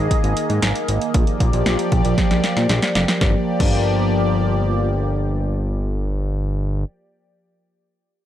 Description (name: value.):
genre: synth-pop.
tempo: 116 BPM.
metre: 4/4.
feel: straight.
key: G minor.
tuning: A4 = 443 Hz.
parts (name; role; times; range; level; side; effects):
phased analog pad; sustained chords; 0.0-6.5 s; Eb3 to Eb5; -21 LUFS; equal; phaser, chorus.
fat analog bass; bass; 0.0-6.8 s; F1 to Bb2; -20 LUFS; equal; none.
punchy analog drum machine; drums; 0.1-3.7 s; crash cymbal, hi-hat, kick drum, snare drum; -20 LUFS; equal; none.
room: digital ambience.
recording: dry, gritty hardware recording, transformer saturation.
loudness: -17 LUFS.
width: side -12 dB against mid.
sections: 0.0-3.2 A section; 3.2-7.4 B section.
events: drum fill 2.2-3.2.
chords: 0.0 Absus2; 1.1 Bb6; 3.2 Gm7.